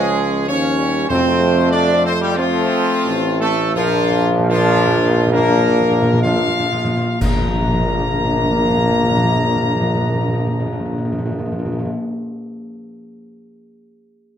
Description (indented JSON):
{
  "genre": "classical, ceremonial fanfare",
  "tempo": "59-98 BPM",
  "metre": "4/4",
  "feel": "straight",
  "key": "Bb major",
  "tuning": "A4 = 440 Hz",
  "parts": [
    { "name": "warm trumpet section", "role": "melody", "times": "0.0-11.9 s", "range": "F4 to Bb5", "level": "-22 LUFS", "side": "left 3 dB", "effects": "none" },
    { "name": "mellow French horn section", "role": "sustained chords", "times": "0.0-11.9 s", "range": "F3 to D4", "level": "-22 LUFS", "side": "left 3 dB", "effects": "none" },
    { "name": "warm trombone section", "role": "sustained chords", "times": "0.0-11.9 s", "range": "F3 to F4", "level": "-22 LUFS", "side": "right 2 dB", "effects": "none" },
    { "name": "warm tuba", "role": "bass", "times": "0.0-11.9 s", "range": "A1 to F2", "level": "-20 LUFS", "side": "right 2 dB", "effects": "none" },
    { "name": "timpani", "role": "percussion", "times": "1.1-11.9 s", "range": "F2 to Bb2", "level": "-21 LUFS", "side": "equal", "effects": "none" },
    { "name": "clash cymbals and concert bass drum", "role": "percussion", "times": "7.2-9.1 s", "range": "none", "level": "-25 LUFS", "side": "equal", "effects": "none" }
  ],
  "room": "moderate large studio reverb, RT60 1.1 s",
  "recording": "none",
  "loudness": "-14 LUFS",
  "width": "side -9 dB against mid",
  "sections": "0.0-7.2 A section; 7.2-11.1 B section",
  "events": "slowing down 0.0-7.2; timpani fill 3.8-7.2; band accent 7.2-8.2",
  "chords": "0.0 Db; 1.1 F; 3.8 Bb",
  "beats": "0.48 | 1.10 1.72 2.37 3.05 | 3.75 4.50 5.33 6.23 | 7.21 8.19 9.18 10.16"
}